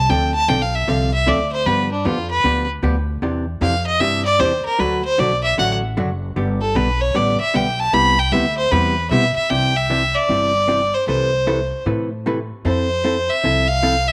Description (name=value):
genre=country, western swing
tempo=153 BPM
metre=4/4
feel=swing 65% on 8ths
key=C major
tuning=A4 = 440 Hz
part: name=clear fiddle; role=melody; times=0.0-14.1 s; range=D4 to B5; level=-20 LUFS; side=equal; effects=none
part: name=upright bass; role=bass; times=0.0-14.1 s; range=F#1 to B2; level=-25 LUFS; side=equal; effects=none
part: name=vintage hollow-body jazz guitar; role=accompaniment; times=0.1-13.9 s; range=C3 to B4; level=-25 LUFS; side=equal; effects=none
room=moderate spring reverb, RT60 1.4 s, small room ambience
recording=none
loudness=-18 LUFS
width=mono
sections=0.0-9.5 A section; 9.5-14.1 B section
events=fiddle solo 0.0-9.5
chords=0.1 Dm7; 1.7 G7; 3.2 Cadd9; 4.8 D; 6.4 G; 7.9 Cmaj7; 9.5 Cadd9; 11.1 Amadd9/C; 12.6 Fmaj7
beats=| 0.09 0.48 0.87 1.26 | 1.66 2.05 2.44 2.83 | 3.22 3.62 4.01 4.40 | 4.79 5.18 5.58 5.97 | 6.36 6.75 7.15 7.54 | 7.93 8.32 8.72 9.11 | 9.50 9.90 10.29 10.68 | 11.08 11.47 11.86 12.26 | 12.65 13.04 13.43 13.83